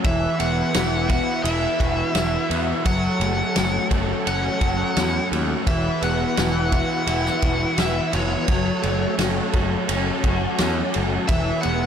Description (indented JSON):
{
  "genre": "rock, shoegaze and dream pop",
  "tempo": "85 BPM",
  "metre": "4/4",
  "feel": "straight",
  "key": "unclear",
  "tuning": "A4 = 440 Hz",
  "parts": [
    { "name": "lush unison pad", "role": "sustained chords", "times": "0.0-11.9 s", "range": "F#4 to B5", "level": "-31 LUFS", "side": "right 1 dB", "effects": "chorus" },
    { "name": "direct-recorded clean electric guitar", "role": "arpeggios", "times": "0.0-11.9 s", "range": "E3 to A4", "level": "-33 LUFS", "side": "left 9 dB", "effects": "none" },
    { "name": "crunchy overdriven guitar", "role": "riff", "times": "0.0-11.9 s", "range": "E3 to F#4", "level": "-27 LUFS", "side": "left 10 dB", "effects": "ensemble chorus" },
    { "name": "overdriven semi-hollow guitar", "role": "riff", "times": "0.0-11.9 s", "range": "E3 to F#4", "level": "-27 LUFS", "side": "right 11 dB", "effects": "reverse reverb" },
    { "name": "growling picked electric bass", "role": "bass", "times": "0.0-11.9 s", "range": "E1 to E2", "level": "-26 LUFS", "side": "equal", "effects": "overdrive" },
    { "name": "loose indie drum kit", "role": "drums", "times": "0.0-11.8 s", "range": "kick drum, ride cymbal, snare drum", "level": "-25 LUFS", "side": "equal", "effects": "none" },
    { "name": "biting lead guitar", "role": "melody", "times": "0.1-11.9 s", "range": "C#5 to F#5", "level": "-27 LUFS", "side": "left 2 dB", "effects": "overdrive, digital delay" }
  ],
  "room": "light reverb, studio ambience",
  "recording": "none",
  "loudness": "-19 LUFS",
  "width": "side -8 dB against mid",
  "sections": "0.0-11.9 A section",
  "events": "none",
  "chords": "0.0 Esus2; 2.9 F#m; 5.7 Esus2; 8.5 F#m; 11.3 Esus2"
}